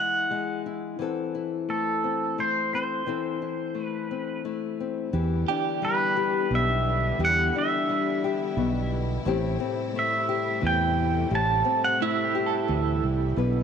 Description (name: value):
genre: acoustic folk-pop ballad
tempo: 87 BPM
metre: 3/4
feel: straight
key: unclear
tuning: A4 = 439 Hz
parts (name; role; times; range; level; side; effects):
- pedal steel guitar; melody; 0.0-13.0 s; A4 to A5; -26 LUFS; right 2 dB; none
- nylon-string guitar; accompaniment; 0.0-13.6 s; A2 to B4; -28 LUFS; left 8 dB; none
- clear studio string section; sustained chords; 5.1-13.6 s; C3 to F#5; -36 LUFS; right 2 dB; none
- fingered electric bass; bass; 5.1-13.6 s; A1 to E2; -26 LUFS; right 2 dB; none
- clean electric guitar; arpeggios; 5.5-7.6, 12.0-13.6 s; E4 to A4; -30 LUFS; right 12 dB; tremolo, slapback echo
room: moderate plate reverb, RT60 3.0 s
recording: 1960s-style stereo with parts hard left and right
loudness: -24 LUFS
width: side -7 dB against mid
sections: 0.0-5.1 A section; 5.1-13.6 B section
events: none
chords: 0.0 E; 1.0 Am/E; 5.1 Em7; 9.3 Am7